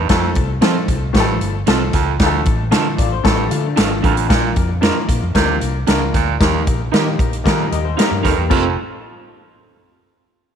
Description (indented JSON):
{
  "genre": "uptempo 1960s-style soul",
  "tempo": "114 BPM",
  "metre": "4/4",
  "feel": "straight",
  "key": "F mixolydian",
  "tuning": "A4 = 439 Hz",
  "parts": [
    { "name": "warm upright piano", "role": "accompaniment", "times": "0.0-8.7 s", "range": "A3 to Bb5", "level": "-22 LUFS", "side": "left 11 dB", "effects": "none" },
    { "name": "raspy baritone saxophone", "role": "riff", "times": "0.0-8.7 s", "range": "D2 to C3", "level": "-24 LUFS", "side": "right 12 dB", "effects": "none" },
    { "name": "vintage muted fingered electric bass", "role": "bass", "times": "0.0-8.8 s", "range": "F1 to F3", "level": "-21 LUFS", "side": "equal", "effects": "none" },
    { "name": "swinging big-band drum kit", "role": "drums", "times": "0.1-8.6 s", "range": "crash cymbal, hi-hat, kick drum, snare drum", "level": "-17 LUFS", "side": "equal", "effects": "none" },
    { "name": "electric guitar through a small old amp", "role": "stabs", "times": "0.6-8.7 s", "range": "C4 to Bb4", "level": "-24 LUFS", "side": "right 11 dB", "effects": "spring reverb" },
    { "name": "electric guitar through a small old amp", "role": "riff", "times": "3.0-4.3, 7.7-8.6 s", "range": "F3 to Eb5", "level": "-25 LUFS", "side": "left 13 dB", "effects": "lush chorus" }
  ],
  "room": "light reverb",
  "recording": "1960s-style stereo with parts hard left and right",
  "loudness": "-14 LUFS",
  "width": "side -8 dB against mid",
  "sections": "0.1-8.5 A section; 8.5-10.6 B section",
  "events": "upright piano fill 3.2-4.3, 7.5-8.5",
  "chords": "0.1 F; 2.2 Dm; 4.3 Bb; 6.4 Eb; 8.5 F"
}